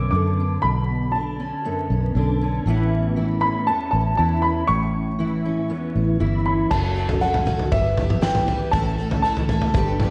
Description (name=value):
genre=indie folk with a building arrangement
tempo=118 BPM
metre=4/4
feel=straight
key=unclear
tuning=A4 = 439 Hz
part: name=clear upright piano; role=melody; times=0.0-10.1 s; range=E5 to D6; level=-27 LUFS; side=equal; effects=none
part: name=fingerpicked steel-string acoustic guitar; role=accompaniment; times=0.0-10.1 s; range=E2 to G4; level=-27 LUFS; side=equal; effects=ensemble chorus
part: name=fingered electric bass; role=bass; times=0.0-10.1 s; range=F#1 to F#2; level=-26 LUFS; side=equal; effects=none
part: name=picked twelve-string acoustic guitar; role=accompaniment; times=6.7-10.1 s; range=F#2 to B4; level=-31 LUFS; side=equal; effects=lush chorus
part: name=loose indie drum kit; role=drums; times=6.7-10.1 s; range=crash cymbal, kick drum, snare drum, toms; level=-25 LUFS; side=equal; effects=none
room=wet lush hall reverb, RT60 1.6 s, small room ambience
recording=dreamy mix soaked in reverb, vinyl crackle, nothing above 10.5 kHz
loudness=-21 LUFS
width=mono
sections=0.0-6.7 A section; 6.7-10.1 B section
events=none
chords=0.0 Bmadd9; 2.7 Aadd9; 6.7 F#m; 7.7 Em/G; 8.7 A